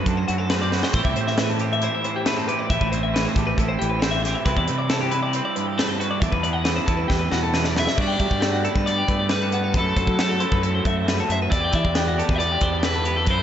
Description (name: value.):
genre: math rock and midwest emo.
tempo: 136 BPM.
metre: 4/4.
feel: straight.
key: E minor.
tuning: A4 = 440 Hz.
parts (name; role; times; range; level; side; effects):
twelve-string electric guitar; accompaniment; 0.0-13.4 s; E2 to G4; -28 LUFS; right 6 dB; none.
twelve-string electric guitar; arpeggios; 0.0-13.4 s; F#4 to G5; -26 LUFS; left 3 dB; none.
crunchy overdriven guitar; riff; 0.0-13.4 s; A2 to C5; -30 LUFS; equal; slapback echo.
growling fingered electric bass; bass; 0.0-13.4 s; A1 to G3; -25 LUFS; equal; overdrive.
crisp fusion drum kit; drums; 0.1-13.4 s; crash cymbal, hi-hat, kick drum, snare drum, splash cymbal; -25 LUFS; equal; none.
crunchy overdriven guitar; melody; 7.8-13.4 s; A4 to E5; -25 LUFS; left 1 dB; none.
room: moderate lush hall reverb, RT60 1.8 s, studio reverb.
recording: big arena sound, nothing above 7.9 kHz.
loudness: -19 LUFS.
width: side -10 dB against mid.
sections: 0.0-8.0 A section; 8.0-13.4 B section.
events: drum fill 0.7, 7.1-8.0.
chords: 0.0 D7/F#; 0.9 Am7; 4.5 Cmaj7; 6.2 Em7; 8.0 Gmaj9; 9.8 F#m7b5; 11.5 Em9.